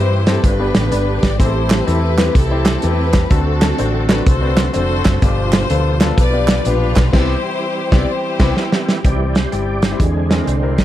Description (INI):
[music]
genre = uptempo gospel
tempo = 126 BPM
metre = 4/4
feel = swing 64% on 8ths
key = C major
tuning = A4 = 441 Hz
[part]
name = bright studio string section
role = melody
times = 0.0-9.0 s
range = C4 to D5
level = -21 LUFS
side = left 2 dB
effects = none
[part]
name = clear concert grand piano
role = accompaniment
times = 0.0-10.8 s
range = G2 to C5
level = -23 LUFS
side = left 4 dB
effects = none
[part]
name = overdriven tonewheel organ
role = sustained chords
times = 0.0-10.8 s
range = B2 to D5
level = -25 LUFS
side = right 3 dB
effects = fast rotary speaker, chorus vibrato
[part]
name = hollow-body short-scale fingered electric bass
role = bass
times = 0.0-10.8 s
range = F1 to G2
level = -18 LUFS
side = equal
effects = none
[part]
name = warm soul drum kit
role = drums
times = 0.3-10.8 s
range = crash cymbal, hi-hat, kick drum, snare drum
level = -16 LUFS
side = right 1 dB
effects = none
[part]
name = group handclap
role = percussion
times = 1.7-7.0 s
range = none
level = -27 LUFS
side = right 6 dB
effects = none
[sound]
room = light reverb, small room ambience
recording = dark, warm production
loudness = -13 LUFS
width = side -13 dB against mid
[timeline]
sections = 0.0-9.0 A section; 9.0-10.8 B section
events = band accent 7.1-9.0; drum fill 8.1-9.0; tonewheel organ solo 9.0-10.8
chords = 0.4 G; 1.4 Am7; 3.3 D7; 5.2 G7; 7.1 Cmaj7; 9.0 C; 10.0 Eaug7